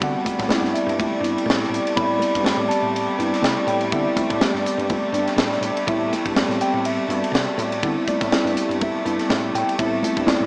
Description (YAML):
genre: electric jazz fusion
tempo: 123 BPM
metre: 4/4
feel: swing 55% on 16ths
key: A dorian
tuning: A4 = 439 Hz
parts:
  - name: mellow tine electric piano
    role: accompaniment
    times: 0.0-10.5 s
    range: G3 to B5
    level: -22 LUFS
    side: equal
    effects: medium stereo tremolo
  - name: clear symphonic string section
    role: sustained chords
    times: 0.0-10.5 s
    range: C3 to A4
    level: -25 LUFS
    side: equal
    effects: none
  - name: woody fretless electric bass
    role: bass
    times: 0.0-10.5 s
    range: G2 to D3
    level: -29 LUFS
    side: equal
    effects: none
  - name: crisp fusion drum kit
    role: drums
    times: 0.0-10.4 s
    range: hi-hat, kick drum, ride cymbal, snare drum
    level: -25 LUFS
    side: equal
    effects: none
  - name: congas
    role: percussion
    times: 0.0-10.4 s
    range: none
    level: -28 LUFS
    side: equal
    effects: none
room: moderate small room reverb, RT60 0.5 s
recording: small speaker sound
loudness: -18 LUFS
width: side -31 dB against mid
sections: 0.0-10.5 A section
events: none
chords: 0.0 Am9